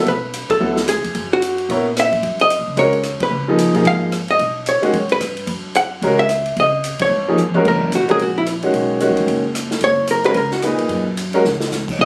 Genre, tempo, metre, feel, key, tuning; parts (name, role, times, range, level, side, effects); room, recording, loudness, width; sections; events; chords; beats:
jazz, small-group swing and bop; 222 BPM; 4/4; swing 60% on 8ths; F# mixolydian; A4 = 440 Hz
bright upright piano; accompaniment; 0.0-11.4 s; A#2 to C#5; -19 LUFS; equal
upright bass; bass; 0.0-12.1 s; F#1 to C#3; -28 LUFS; equal
archtop guitar, miked and amplified; melody; 0.1-12.1 s; E4 to F#5; -19 LUFS; equal
open jazz drum kit; drums; 0.1-12.1 s; crash cymbal, hi-hat, kick drum, ride cymbal, rim click, snare drum, toms; -28 LUFS; equal
light reverb; recorded on a phone in the room, club ambience; -18 LUFS; mono
0.0-7.7 A section; 7.7-12.1 A section
band accent 0.5, 3.2, 7.0; drum fill 7.4, 11.4
0.1 Bm7; 1.1 F#; 3.3 C#7; 4.4 B; 5.5 F#7; 6.6 C#5; 7.7 F#; 8.7 B; 9.8 F#
| 0.07 0.34 0.61 0.88 | 1.15 1.42 1.69 1.96 | 2.23 2.50 2.77 3.04 | 3.31 3.58 3.86 4.13 | 4.40 4.67 4.94 5.21 | 5.48 5.75 6.02 6.30 | 6.57 6.84 7.11 7.38 | 7.65 7.92 8.19 8.46 | 8.73 9.01 9.28 9.55 | 9.82 10.09 10.36 10.63 | 10.90 11.17 11.44 11.71 | 11.98